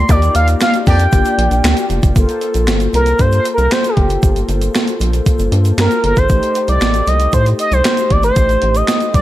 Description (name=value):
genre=early-eighties boogie funk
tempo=116 BPM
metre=4/4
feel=straight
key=G minor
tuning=A4 = 439 Hz
part: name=expressive synth lead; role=melody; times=0.0-9.2 s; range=G4 to C6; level=-16 LUFS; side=equal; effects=chorus
part: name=mellow synth brass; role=accompaniment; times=0.0-9.2 s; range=A3 to D5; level=-21 LUFS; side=left 3 dB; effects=chorus
part: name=rubbery square bass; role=bass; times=0.0-9.2 s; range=F1 to A2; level=-15 LUFS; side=equal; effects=none
part: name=clear horn section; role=second line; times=0.1-1.0 s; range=Bb3 to D5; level=-24 LUFS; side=right 2 dB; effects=none
part: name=clean 12-bit digital drum machine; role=drums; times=0.1-9.2 s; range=handclaps, hi-hat, kick drum, snare drum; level=-16 LUFS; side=equal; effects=overdrive, gated reverb
part: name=tube shaker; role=percussion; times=0.1-9.2 s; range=none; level=-35 LUFS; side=right 10 dB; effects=none
room=little or no reverb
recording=none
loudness=-11 LUFS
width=side -14 dB against mid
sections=0.0-2.2 A section; 2.2-9.2 B section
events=band accent 0.1-2.2; analog synth lead solo 2.2-9.2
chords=0.1 Ebmaj9; 1.1 Gm7; 2.2 Gm11; 6.3 Am7b5